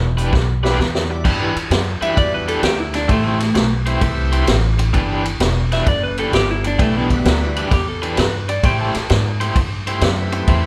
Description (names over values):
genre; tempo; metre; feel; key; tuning
electric blues shuffle; 130 BPM; 4/4; swing 67% on 8ths; E minor; A4 = 439 Hz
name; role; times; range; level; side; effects
clean lap steel guitar; melody; 0.0-10.1 s; A3 to A5; -23 LUFS; equal; none
upright bass; bass; 0.0-10.7 s; E1 to A2; -22 LUFS; equal; none
cranked stack guitar; riff; 0.2-10.7 s; E3 to C5; -26 LUFS; equal; overdrive, tremolo
vintage drum kit; drums; 0.2-10.6 s; crash cymbal, hi-hat, kick drum, ride cymbal, snare drum; -22 LUFS; equal; none
bright tonewheel organ; accompaniment; 0.6-10.7 s; G3 to D5; -29 LUFS; equal; slow rotary speaker, overdrive
room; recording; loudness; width
moderate large studio reverb, RT60 1.2 s; band playing live in one room; -18 LUFS; mono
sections
0.0-1.2 A section; 1.2-10.7 B section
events
drum fill 0.3-1.2; electric slide guitar solo 1.2-10.7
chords
0.0 Em7; 3.1 Am7; 4.9 Em7; 8.6 Am7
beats
0.33 0.79 | 1.25 1.71 2.17 2.63 | 3.10 3.56 4.02 4.48 | 4.94 5.40 5.87 6.33 | 6.79 7.25 7.71 8.17 | 8.63 9.10 9.56 10.02 | 10.48